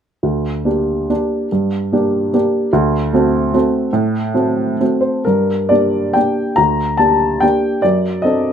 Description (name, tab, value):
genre	classical, piano waltz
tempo	122-155 BPM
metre	3/4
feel	rubato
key	G minor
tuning	A4 = 440 Hz
part	dark upright piano	solo	0.2-8.5 s	D2 to Bb5	-13 LUFS	equal	none
room	moderate studio reverb, RT60 0.7 s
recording	none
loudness	-14 LUFS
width	side -8 dB against mid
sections	0.2-5.3 A section; 5.3-8.5 B section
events	none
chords	0.2 Gm/D; 2.7 D7; 5.3 Gm; 7.8 D7/F#